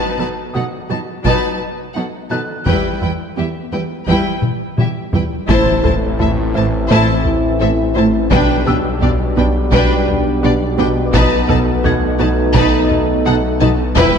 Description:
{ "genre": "cinematic, hybrid orchestral and electronic film score", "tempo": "85 BPM", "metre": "4/4", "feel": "straight", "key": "A minor", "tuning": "A4 = 440 Hz", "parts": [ { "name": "warm symphonic violin section", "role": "second line", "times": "0.0-14.2 s", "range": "G4 to A5", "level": "-22 LUFS", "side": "left 3 dB", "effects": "none" }, { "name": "warm symphonic viola section", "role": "accompaniment", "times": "0.0-14.2 s", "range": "F#3 to E4", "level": "-22 LUFS", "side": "right 1 dB", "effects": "none" }, { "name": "analog pluck", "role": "arpeggios", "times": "0.0-14.2 s", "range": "E3 to A4", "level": "-26 LUFS", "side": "right 1 dB", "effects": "none" }, { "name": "warm symphonic cello section", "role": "bass", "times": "0.2-14.0 s", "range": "E2 to B2", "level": "-21 LUFS", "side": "right 4 dB", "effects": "none" }, { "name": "felt-muted upright piano", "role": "texture", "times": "0.5-14.0 s", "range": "A4 to G#6", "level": "-31 LUFS", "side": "left 2 dB", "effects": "ping-pong delay" }, { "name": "taiko ensemble", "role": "drums", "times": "1.2-14.2 s", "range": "none", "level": "-21 LUFS", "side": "left 1 dB", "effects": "none" }, { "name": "warm symphonic violin section", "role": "melody", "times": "5.5-14.2 s", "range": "D5 to A5", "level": "-24 LUFS", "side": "left 6 dB", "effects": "none" }, { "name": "bright trombone section", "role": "sustained chords", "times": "5.5-14.2 s", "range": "A2 to A3", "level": "-23 LUFS", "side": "right 5 dB", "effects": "none" }, { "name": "mellow French horn section", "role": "sustained chords", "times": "5.5-14.2 s", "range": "B3 to E4", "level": "-21 LUFS", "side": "left 4 dB", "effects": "none" }, { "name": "rich symphonic double bass section", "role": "bass", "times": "5.5-14.1 s", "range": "E1 to B1", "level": "-22 LUFS", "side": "right 3 dB", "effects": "none" }, { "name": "swelling detuned saw bass", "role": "bass", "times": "5.5-14.2 s", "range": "E1 to B1", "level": "-20 LUFS", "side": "left 1 dB", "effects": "none" }, { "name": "impact", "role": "sound effects", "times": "5.5-8.3 s", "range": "none", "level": "-25 LUFS", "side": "left 1 dB", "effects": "none" } ], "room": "moderate concert hall reverb, RT60 2.1 s", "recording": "nothing above 11.0 kHz", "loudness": "-13 LUFS", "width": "side -7 dB against mid", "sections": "0.0-5.5 A section; 5.5-14.2 A section", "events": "drum fill 4.4-5.5; impact 5.5-8.3", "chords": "0.0 B7; 2.7 Em; 5.5 Am; 8.3 G/B; 11.1 B7" }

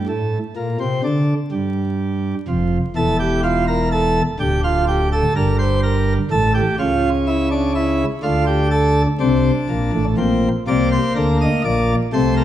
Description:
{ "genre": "classical, baroque-style 3-part fugue for pipe organ", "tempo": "62 BPM", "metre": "4/4", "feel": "straight", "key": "unclear", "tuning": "A4 = 438 Hz", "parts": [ { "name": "pipe organ, plenum", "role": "solo", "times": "0.0-12.4 s", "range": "D1 to Eb5", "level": "-16 LUFS", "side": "equal", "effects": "none" } ], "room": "wet recital hall reverb, RT60 1.4 s", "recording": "vinyl crackle", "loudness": "-16 LUFS", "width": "side -12 dB against mid", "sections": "0.0-10.2 A section; 10.2-12.4 B section", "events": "none", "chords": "0.0 N.C.; 2.5 Gm13/E; 4.4 Dmadd11; 6.3 A7; 8.2 Dm; 10.2 Bbadd9" }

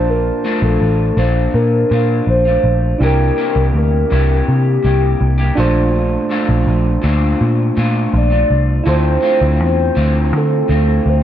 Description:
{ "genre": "indie pop", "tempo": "82 BPM", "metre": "4/4", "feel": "straight", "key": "Bb lydian", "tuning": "A4 = 441 Hz", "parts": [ { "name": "hollow clarinet-like synth lead", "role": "melody", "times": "0.0-11.2 s", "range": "G4 to D5", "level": "-18 LUFS", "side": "equal", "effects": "wide subtle chorus, analog delay" }, { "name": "electric guitar through a small old amp", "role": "accompaniment", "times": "0.0-11.2 s", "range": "Bb2 to G4", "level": "-20 LUFS", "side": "left 2 dB", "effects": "lush chorus, warbly pitch drift" }, { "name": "soft electric-piano-like synth keys", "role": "accompaniment", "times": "0.0-11.2 s", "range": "D4 to A5", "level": "-23 LUFS", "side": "right 3 dB", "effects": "chorus, cassette tape" }, { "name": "vintage muted picked electric bass", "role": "bass", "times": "0.0-11.2 s", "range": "A1 to D3", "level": "-14 LUFS", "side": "equal", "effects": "none" } ], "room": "moderate small room reverb, RT60 0.6 s", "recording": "dark, warm production", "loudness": "-12 LUFS", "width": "side -11 dB against mid", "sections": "0.0-11.2 A section", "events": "none", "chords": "0.0 Bbmaj7; 3.0 C7; 5.6 Bbmaj7; 8.9 Dm7" }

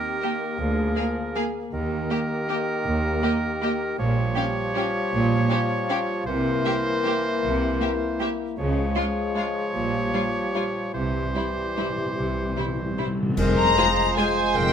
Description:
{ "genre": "classical, orchestral ballroom waltz", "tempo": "139-171 BPM", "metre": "3/4", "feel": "rubato", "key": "unclear", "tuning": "A4 = 440 Hz", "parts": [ { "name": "clear oboe", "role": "second line", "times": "0.0-14.7 s", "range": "Bb4 to Db5", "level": "-30 LUFS", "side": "right 2 dB", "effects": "none" }, { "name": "mellow clarinet", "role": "second line", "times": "0.0-14.7 s", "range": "G4 to C5", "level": "-32 LUFS", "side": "left 4 dB", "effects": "none" }, { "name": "warm bassoon", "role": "accompaniment", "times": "0.0-14.7 s", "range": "Eb3 to Ab3", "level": "-32 LUFS", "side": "right 2 dB", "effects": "none" }, { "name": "mellow French horn section", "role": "sustained chords", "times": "0.0-14.7 s", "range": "G3 to Ab4", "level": "-30 LUFS", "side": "left 5 dB", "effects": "none" }, { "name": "rich studio violin section", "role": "melody", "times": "0.2-14.7 s", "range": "C5 to Bb5", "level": "-28 LUFS", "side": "left 3 dB", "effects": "none" }, { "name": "rich studio violin section", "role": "second line", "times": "0.2-14.3 s", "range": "E4 to C5", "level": "-32 LUFS", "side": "left 2 dB", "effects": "none" }, { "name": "rich studio viola section", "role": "accompaniment", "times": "0.2-14.3 s", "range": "G3 to F4", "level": "-32 LUFS", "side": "right 3 dB", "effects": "none" }, { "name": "rich studio cello section", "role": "bass", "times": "0.6-14.7 s", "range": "D2 to Db3", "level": "-30 LUFS", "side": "right 1 dB", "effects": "none" }, { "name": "rich studio double bass section", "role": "bass", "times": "0.6-14.7 s", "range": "F1 to Eb2", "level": "-30 LUFS", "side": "right 3 dB", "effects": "none" }, { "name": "cymbal swell, clash cymbals and concert bass drum", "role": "percussion", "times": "10.9-14.1 s", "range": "none", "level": "-31 LUFS", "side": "equal", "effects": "none" }, { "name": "timpani", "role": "percussion", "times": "10.9-13.9 s", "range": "F2 to C3", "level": "-30 LUFS", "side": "left 1 dB", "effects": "none" }, { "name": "mellow trumpet section", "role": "stabs", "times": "13.4-14.7 s", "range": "C5", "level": "-29 LUFS", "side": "right 4 dB", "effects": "none" }, { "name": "silver concert flute", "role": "second line", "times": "13.6-14.7 s", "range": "G5 to Bb5", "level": "-30 LUFS", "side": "equal", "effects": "none" } ], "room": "moderate recital hall reverb, RT60 1.3 s", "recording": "none", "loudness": "-22 LUFS", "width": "side -8 dB against mid", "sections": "0.0-13.4 A section; 13.4-14.7 B section", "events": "timpani fill 10.9-13.4; band accent 13.4-13.8", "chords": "0.0 Eb; 0.6 Bb7/D; 1.7 Eb; 4.0 Gm7b5/Bb; 6.3 C7; 8.6 Db; 9.7 Gm7b5/Bb; 10.9 C; 13.4 Fm" }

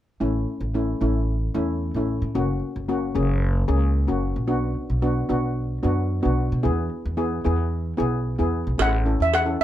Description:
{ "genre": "calypso", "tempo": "112 BPM", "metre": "4/4", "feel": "straight", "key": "A major", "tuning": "A4 = 440 Hz", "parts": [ { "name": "steel pan", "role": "accompaniment", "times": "0.2-9.6 s", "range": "A3 to A4", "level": "-25 LUFS", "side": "left 1 dB", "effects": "none" }, { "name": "upright bass", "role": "bass", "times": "0.2-9.6 s", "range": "F#1 to B2", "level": "-24 LUFS", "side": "equal", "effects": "none" }, { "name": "steel pan", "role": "melody", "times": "8.8-9.6 s", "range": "E5 to F#5", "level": "-22 LUFS", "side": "equal", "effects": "none" }, { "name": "cowbell", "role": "percussion", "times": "8.8-9.5 s", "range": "none", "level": "-27 LUFS", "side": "right 7 dB", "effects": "none" } ], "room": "light reverb", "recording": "none", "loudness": "-21 LUFS", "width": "side -12 dB against mid", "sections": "0.2-8.8 A section", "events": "none", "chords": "0.2 A; 2.3 F#; 4.5 Bm; 6.6 E; 8.8 A6" }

